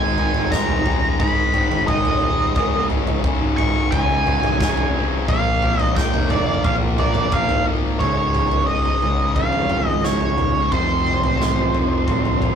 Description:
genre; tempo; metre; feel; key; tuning
quiet-loud alternative rock; 88 BPM; 4/4; straight; unclear; A4 = 436 Hz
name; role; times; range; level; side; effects
octave-fuzz lead guitar; melody; 0.0-12.6 s; C5 to Db6; -22 LUFS; right 2 dB; distortion
tight distorted guitar; riff; 0.0-12.6 s; Db2 to Bb3; -26 LUFS; left 6 dB; distortion
tight distorted guitar; riff; 0.0-8.0 s; Db2 to Bb3; -28 LUFS; right 8 dB; distortion
fuzz picked electric bass; bass; 0.0-12.5 s; C1 to Ab2; -25 LUFS; right 1 dB; overdrive
big rock drum kit; drums; 0.2-12.6 s; kick drum, snare drum, toms; -21 LUFS; left 1 dB; none
twelve-string electric guitar; arpeggios; 8.0-12.6 s; Db2 to F4; -25 LUFS; right 4 dB; none
room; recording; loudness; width
light reverb; rough rehearsal-room recording, tube saturation; -16 LUFS; side -7 dB against mid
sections
0.0-8.0 A section; 8.0-12.6 B section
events
lead electric guitar solo 0.0-8.0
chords
0.0 Abm; 2.6 Db5; 5.3 Bb5; 8.0 Db; 10.7 F

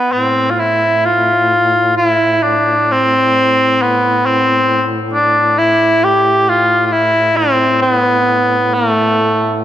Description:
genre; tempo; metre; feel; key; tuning
caucasian folk, Caucasian lament; 65 BPM; 3/4; rubato; A minor; A4 = 440 Hz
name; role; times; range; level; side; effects
warm cor anglais; melody; 0.0-9.6 s; A3 to G4; -11 LUFS; equal; none
mellow duduk; drone; 0.1-9.6 s; A2; -21 LUFS; left 1 dB; none
room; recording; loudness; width
moderate church reverb, RT60 3.6 s; none; -10 LUFS; side -11 dB against mid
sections
0.0-9.6 A section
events
none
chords
none

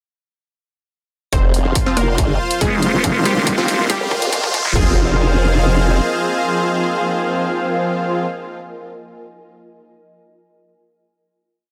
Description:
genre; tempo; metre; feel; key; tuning
heavy wobble dubstep; 140 BPM; 4/4; half-time; F minor; A4 = 440 Hz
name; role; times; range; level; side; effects
unison pluck; melody; 1.3-8.3 s; G3 to C5; -27 LUFS; equal; digital delay
supersaw pad; sustained chords; 1.3-8.3 s; F4 to C6; -25 LUFS; equal; sidechain pumping
formant-sweep wobble bass; bass; 1.3-6.0 s; F1 to C2; -20 LUFS; equal; chorus, overdrive
dubstep drum kit; drums; 1.3-4.9 s; hi-hat, kick drum, toms; -22 LUFS; equal; distortion
electronic hi-hat; drums; 1.3-4.6 s; none; -25 LUFS; equal; none
riser; sound effects; 3.8-4.8 s; none; -29 LUFS; equal; none
granular cloud pad; texture; 2.5-8.5 s; F4 to Ab5; -28 LUFS; equal; built-in reverb, sidechain pumping
supersaw stab; stabs; 1.9-8.3 s; F3 to F4; -24 LUFS; equal; phaser, digital delay
vowel-sweep wobble bass; bass; 2.6-4.7 s; Eb1 to F1; -20 LUFS; equal; chorus, overdrive
room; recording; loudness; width
light reverb, digital ambience; dense, heavily limited modern master, high-pass filter; -17 LUFS; mono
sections
1.3-4.8 build; 4.8-8.2 final chord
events
build-up 1.3-4.8; filter sweep 1.3-4.8; drum fill 3.0-4.8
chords
1.3 Fm

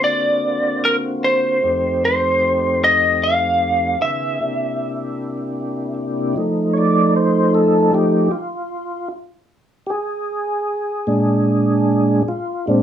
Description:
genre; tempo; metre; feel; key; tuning
blues; 51 BPM (dotted quarters); 12/8; straight; F mixolydian; A4 = 439 Hz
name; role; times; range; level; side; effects
lightly driven lead guitar; melody; 0.0-5.9 s; A#4 to F5; -16 LUFS; equal; none
mellow tonewheel organ; sustained chords; 0.0-12.8 s; F2 to D5; -18 LUFS; equal; slow rotary speaker, overdrive, chorus vibrato
room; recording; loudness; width
wet club reverb, RT60 0.5 s; small room ambience; -16 LUFS; side -9 dB against mid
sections
0.0-6.4 A section; 6.4-12.8 B section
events
tonewheel organ solo 6.4-12.8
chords
0.0 D7alt; 1.6 F7; 4.0 C7; 6.4 F7; 11.1 Bb7

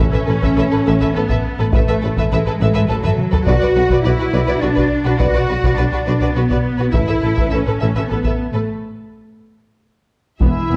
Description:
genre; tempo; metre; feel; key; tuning
cinematic, epic orchestral film score; 104 BPM; 3/4; straight; unclear; A4 = 440 Hz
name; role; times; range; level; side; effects
warm symphonic violin section; melody; 0.0-10.8 s; B4 to E5; -30 LUFS; equal; none
warm symphonic violin section; second line; 0.0-10.8 s; F#4 to B4; -30 LUFS; equal; none
warm symphonic viola section; accompaniment; 0.0-10.8 s; B3 to A4; -27 LUFS; equal; none
mellow French horn section; sustained chords; 0.0-7.1, 10.4-10.8 s; E4 to E5; -28 LUFS; equal; none
warm symphonic cello section; bass; 0.0-10.8 s; E2 to F#4; -22 LUFS; equal; none
warm symphonic double bass section; bass; 0.0-10.8 s; E1 to B1; -23 LUFS; equal; none
warm tuba; bass; 0.0-10.8 s; E1 to B1; -25 LUFS; equal; none
taiko ensemble; drums; 0.4-10.8 s; none; -22 LUFS; equal; none
clear trumpet; stabs; 10.4-10.8 s; E4; -26 LUFS; equal; none
room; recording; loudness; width
moderate scoring stage reverb, RT60 1.6 s; dark, warm production; -17 LUFS; mono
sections
0.0-10.4 A section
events
drum fill 3.0-3.5; break 8.7-10.4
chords
0.0 Asus2; 3.5 Bm; 6.9 Asus2

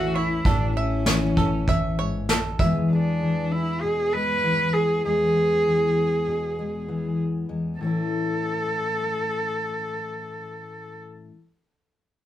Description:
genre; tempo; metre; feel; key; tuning
indie folk with a building arrangement; 98 BPM; 4/4; straight; A major; A4 = 440 Hz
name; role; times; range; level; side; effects
warm cello; melody; 0.0-11.0 s; C#4 to B4; -25 LUFS; right 1 dB; none
fingerpicked steel-string acoustic guitar; accompaniment; 0.0-11.4 s; E2 to G#4; -26 LUFS; left 2 dB; none
bluegrass banjo; arpeggios; 0.0-2.9 s; A4 to E5; -28 LUFS; right 4 dB; none
upright bass; bass; 0.0-2.6 s; A1; -29 LUFS; equal; none
soft brush drum kit; drums; 0.5-2.7 s; kick drum, snare drum; -23 LUFS; equal; none
room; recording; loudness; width
moderate studio reverb, RT60 0.5 s; band playing live in one room; -21 LUFS; side -12 dB against mid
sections
0.0-7.8 A section; 7.8-10.2 B section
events
none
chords
0.0 A; 2.6 E; 7.8 A

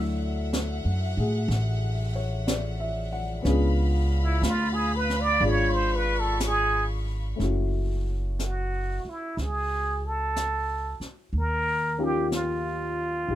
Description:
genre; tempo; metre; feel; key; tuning
jazz ballad; 61 BPM; 4/4; swing 67% on 8ths; F# minor; A4 = 439 Hz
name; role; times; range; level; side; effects
warm upright piano; accompaniment; 0.0-13.4 s; F#3 to F#5; -31 LUFS; left 3 dB; none
dark chamber string section; sustained chords; 0.0-7.4 s; E5 to C#6; -36 LUFS; left 3 dB; none
upright bass; bass; 0.0-13.4 s; F#1 to A2; -27 LUFS; equal; none
jazz brush drum kit; drums; 0.5-13.4 s; brushed snare drum, hi-hat, snare drum; -33 LUFS; equal; none
trumpet with plunger mute; melody; 4.2-13.4 s; E4 to D5; -27 LUFS; right 2 dB; none
room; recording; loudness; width
little or no reverb; close, detailed microphones; -24 LUFS; side -12 dB against mid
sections
0.0-7.4 A section; 7.4-13.4 B section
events
muted trumpet solo 0.0-7.4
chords
0.0 Dadd9; 3.5 C#7b9; 7.4 F#m7; 11.3 D#9

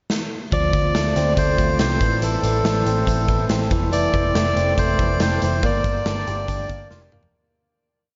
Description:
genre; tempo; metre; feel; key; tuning
jangly indie pop; 141 BPM; 4/4; straight; D minor; A4 = 441 Hz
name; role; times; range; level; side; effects
big rock drum kit; drums; 0.1-7.3 s; hi-hat, kick drum, snare drum, toms; -26 LUFS; equal; none
melodica; melody; 0.5-6.9 s; A4 to D5; -25 LUFS; equal; diffuse ambient delay
direct-recorded clean electric guitar; arpeggios; 0.5-7.9 s; E3 to G4; -28 LUFS; equal; lush chorus, diffuse ambient delay
vintage muted picked electric bass; bass; 0.5-7.3 s; F1 to D2; -26 LUFS; equal; none
room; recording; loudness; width
wet huge ambient reverb, RT60 7.4 s; dreamy mix soaked in reverb, nothing above 7.5 kHz; -20 LUFS; mono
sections
0.0-0.5 pickup bar; 0.5-7.3 verse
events
drum fill 0.1-0.5, 6.9-7.3; fade-out 5.6-7.3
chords
0.0 N.C.; 0.5 Dm7; 2.0 Am; 3.7 Fmaj7; 5.6 Gm

